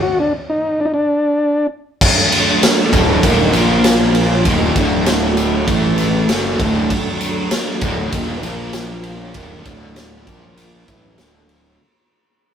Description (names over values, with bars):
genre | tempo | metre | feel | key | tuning
psychedelic rock | 98 BPM | 4/4 | straight | unclear | A4 = 440 Hz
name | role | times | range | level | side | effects
combo organ | melody | 0.0-1.7 s | D4 to F#4 | -15 LUFS | left 1 dB | none
string machine, violas | sustained chords | 2.0-11.8 s | E3 to E5 | -22 LUFS | right 1 dB | ensemble chorus
raw garage drum kit | drums | 2.0-11.6 s | crash cymbal, kick drum, ride cymbal, snare drum | -17 LUFS | equal | none
tambourine | percussion | 2.6-11.3 s | none | -33 LUFS | left 3 dB | none
crunchy overdriven guitar | riff | 2.9-11.8 s | D2 to Bb3 | -18 LUFS | equal | harmonic tremolo
fuzz fingered electric bass | bass | 2.9-11.8 s | D1 to Bb1 | -21 LUFS | equal | overdrive
room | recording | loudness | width
moderate studio reverb, RT60 0.6 s | rough rehearsal-room recording, warm saturation | -13 LUFS | side -8 dB against mid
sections
0.0-2.0 A section; 2.0-11.8 B section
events
stop 0.0-2.0; fade-out 2.0-11.8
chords
0.0 N.C.; 2.0 D; 3.5 Bb5; 4.5 D; 5.7 A5; 6.3 D; 8.4 Bb5; 9.4 D; 10.3 Bb5; 10.9 D